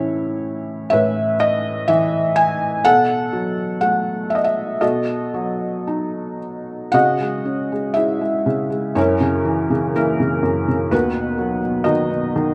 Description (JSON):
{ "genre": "classical, lyrical solo piano", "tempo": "55-64 BPM", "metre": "4/4", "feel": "rubato", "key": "C# minor from 6.9 s", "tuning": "A4 = 435 Hz", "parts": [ { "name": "felt-muted upright piano", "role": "solo", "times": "0.0-12.5 s", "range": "D#2 to G#5", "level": "-20 LUFS", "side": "equal", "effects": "none" } ], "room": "moderate recital hall reverb, RT60 1.8 s", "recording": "none", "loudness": "-19 LUFS", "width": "mono", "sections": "0.0-6.9 A section; 6.9-12.5 B section", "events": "none", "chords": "0.0 Aadd9; 2.8 B5; 4.8 B7; 6.9 C#madd9; 9.0 F#7; 10.9 B/D#" }